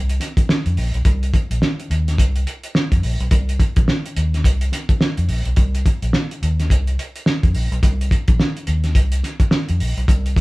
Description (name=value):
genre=funk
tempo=106 BPM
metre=4/4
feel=swing 60% on 16ths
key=unclear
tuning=A4 = 440 Hz
part: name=vintage muted fingered electric bass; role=bass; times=0.0-10.3 s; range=Bb1 to F2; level=-19 LUFS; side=equal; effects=none
part: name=cloth-damped thuddy drum kit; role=drums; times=0.1-10.4 s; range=hi-hat, kick drum, snare drum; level=-18 LUFS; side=equal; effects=none
room=light reverb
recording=band playing live in one room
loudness=-16 LUFS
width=side -22 dB against mid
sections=0.0-10.4 A section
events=none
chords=none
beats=0.49 | 1.05 1.62 2.18 2.75 | 3.31 3.88 4.44 5.00 | 5.57 6.13 6.70 7.26 | 7.83 8.39 8.96 9.52 | 10.09